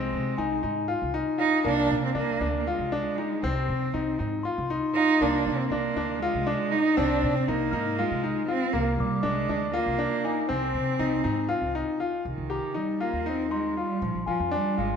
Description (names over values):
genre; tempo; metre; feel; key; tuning
contemporary instrumental, chamber music in an uneven meter; 238 BPM (eighths); 7/8; straight; unclear; A4 = 440 Hz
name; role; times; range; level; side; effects
rich cello; melody; 0.0-15.0 s; Eb3 to Eb4; -27 LUFS; right 4 dB; none
bright grand piano; arpeggios; 0.0-15.0 s; Bb3 to G4; -28 LUFS; left 3 dB; none
upright bass; bass; 0.0-15.0 s; Ab1 to C3; -32 LUFS; equal; none
glockenspiel with rubber mallets; texture; 0.0-15.0 s; Ab5 to F6; -36 LUFS; left 3 dB; none
room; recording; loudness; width
wet scoring stage reverb, RT60 1.6 s; none; -24 LUFS; side -7 dB against mid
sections
0.0-12.3 A section; 12.3-15.0 B section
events
none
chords
0.0 Fm7/C; 1.7 Bb7/C; 3.4 Fm7/C; 5.2 Bb7/C; 7.0 Fm7/C; 8.7 Bb7/C; 10.5 Fm7/C; 12.3 Cm; 14.0 Bb7